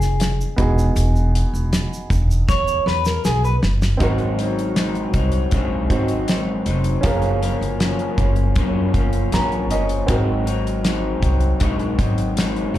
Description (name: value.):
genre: indie pop, bedroom pop.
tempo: 79 BPM.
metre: 4/4.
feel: straight.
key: unclear.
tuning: A4 = 441 Hz.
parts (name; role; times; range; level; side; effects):
electric guitar through a small old amp; accompaniment; 0.0-12.8 s; Gb2 to Db5; -23 LUFS; left 2 dB; wide subtle chorus, warbly pitch drift, slapback echo.
warm upright piano; accompaniment; 0.0-12.8 s; B3 to Bb5; -27 LUFS; right 3 dB; cassette tape, slapback echo.
upright bass; bass; 0.0-12.8 s; E1 to Gb2; -20 LUFS; equal; none.
damped 70s drum kit; drums; 0.0-12.8 s; hi-hat, kick drum, snare drum; -21 LUFS; equal; none.
egg shaker; percussion; 0.0-4.0 s; none; -38 LUFS; right 4 dB; slapback echo.
room: little or no reverb.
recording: live gig heard through the venue's PA, club reverb.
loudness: -17 LUFS.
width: side -13 dB against mid.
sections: 0.0-4.0 A section; 4.0-12.8 B section.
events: clean electric guitar solo 0.0-4.0; drum fill 2.5-4.0; upright piano fill 8.9-10.1.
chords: 0.0 Fm7; 0.6 Emaj7; 4.0 Ab7; 7.0 Gbmaj7; 10.1 Ab7.